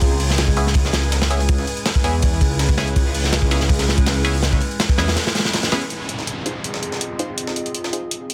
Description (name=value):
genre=drum and bass, jungle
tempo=163 BPM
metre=4/4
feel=straight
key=unclear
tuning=A4 = 437 Hz
part: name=warbly tape-like pad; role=sustained chords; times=0.0-8.3 s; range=C4 to Eb5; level=-31 LUFS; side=equal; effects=chorus, built-in reverb
part: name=dark detuned saw bass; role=bass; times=0.0-5.2 s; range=Db2 to Fb2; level=-22 LUFS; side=equal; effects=none
part: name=breakbeat sampler-style drum kit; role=drums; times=0.0-8.3 s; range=hi-hat, snare drum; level=-30 LUFS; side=equal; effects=high-pass filter on hats, high-pass filter on snare
part: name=crunchy breakbeat drum kit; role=drums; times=0.0-5.8 s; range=hi-hat, kick drum, snare drum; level=-21 LUFS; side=equal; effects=none
part: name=drifting glass-harmonics texture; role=texture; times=0.0-5.9 s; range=Ab4 to Ab5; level=-39 LUFS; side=equal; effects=none
part: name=band-passed chord stab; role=stabs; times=0.6-8.0 s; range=Cb4 to C5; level=-30 LUFS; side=equal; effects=phaser, dub echo
part: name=downlifter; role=sound effects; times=5.9-8.3 s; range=none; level=-33 LUFS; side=equal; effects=none
room=light reverb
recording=dense, heavily limited modern master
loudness=-19 LUFS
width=mono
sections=0.0-5.9 A section; 5.9-8.3 B section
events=drop 0.0-5.9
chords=0.0 Dbm7; 5.9 Fm7